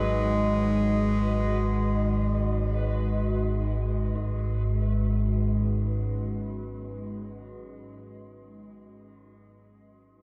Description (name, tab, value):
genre	dark ambient drone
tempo	free time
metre	none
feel	none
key	G# minor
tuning	A4 = 440 Hz
part	clear bass clarinet	melody	0.0-3.0 s	G#3	-32 LUFS	equal	diffuse ambient delay
part	deep dark ambient pad	sustained chords	0.0-7.8 s	G#3 to D#5	-35 LUFS	equal	chorus, built-in reverb
part	dark detuned synth bell	arpeggios	0.0-10.2 s	D#4	-54 LUFS	equal	none
part	deep rumbling drone	drone	0.0-7.3 s	G#1 to G#2	-30 LUFS	equal	built-in reverb, subtle chorus
part	backwards swelling texture	texture	0.0-4.2 s	B4	-46 LUFS	equal	built-in reverb
room	wet huge ambient reverb, RT60 8.5 s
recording	in a vast, echoing space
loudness	-27 LUFS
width	mono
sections	0.0-4.2 A section; 4.2-8.6 B section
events	none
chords	0.0 G#m